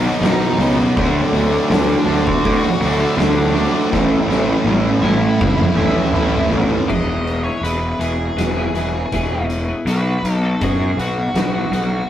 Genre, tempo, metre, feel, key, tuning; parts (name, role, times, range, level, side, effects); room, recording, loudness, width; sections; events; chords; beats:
quiet-loud alternative rock; 81 BPM; 4/4; straight; E major; A4 = 440 Hz
fuzz guitar; riff; 0.0-6.9 s; A2 to D4; -26 LUFS; equal
sludgy distorted guitar; riff; 0.0-6.9 s; A2 to F#4; -23 LUFS; left 3 dB; overdrive
thick fuzz guitar; riff; 0.0-6.9 s; A2 to E4; -19 LUFS; right 3 dB; distortion
fuzz picked electric bass; bass; 0.0-12.0 s; E1 to A2; -20 LUFS; equal; overdrive
octave-fuzz lead guitar; melody; 0.2-12.1 s; D4 to F#5; -24 LUFS; equal; distortion
oversized low-tuned drum kit; drums; 0.2-11.9 s; crash cymbal, hi-hat, kick drum, snare drum, toms; -21 LUFS; equal
twelve-string electric guitar; arpeggios; 6.9-11.9 s; B2 to G#4; -23 LUFS; left 3 dB
moderate booth ambience, RT60 0.2 s; rough rehearsal-room recording, warm saturation; -15 LUFS; side -11 dB against mid
0.0-6.9 A section; 6.9-12.1 B section
drum fill 3.9-6.9; half time 6.9-12.1
0.0 B; 1.0 D; 3.9 A; 6.9 E; 9.9 B
0.22 | 0.96 1.70 2.44 3.18 | 3.92 4.66 5.40 6.15 | 6.89 7.63 8.38 9.12 | 9.87 10.62 11.36